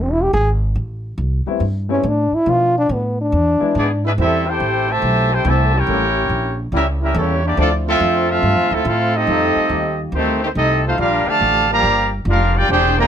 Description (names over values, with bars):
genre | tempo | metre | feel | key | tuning
jazz, big band swing | 141 BPM | 4/4 | swing 67% on 8ths | A minor | A4 = 440 Hz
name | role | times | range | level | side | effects
mellow trombone | melody | 0.0-4.1 s | B3 to G#4 | -17 LUFS | left 1 dB | none
upright bass | bass | 0.0-13.1 s | E1 to B2 | -20 LUFS | equal | none
warm grand piano | accompaniment | 1.5-3.7 s | E3 to F4 | -23 LUFS | left 6 dB | none
warm trumpet section | melody | 3.8-13.1 s | A3 to Bb5 | -17 LUFS | equal | none
warm trombone section | second line | 3.8-13.1 s | B#2 to G4 | -22 LUFS | right 1 dB | none
mellow trombone section | sustained chords | 4.2-10.4 s | F3 to C5 | -24 LUFS | left 1 dB | none
room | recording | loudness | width
light reverb | none | -15 LUFS | side -9 dB against mid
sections
0.0-4.2 A section; 4.2-13.1 B section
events
trombone solo 0.0-4.2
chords
0.0 E; 0.8 Am7; 2.5 Bm7b5; 3.3 E7; 4.2 Am7; 5.9 A7b9; 7.6 Dm9; 9.3 F9; 11.0 Bb6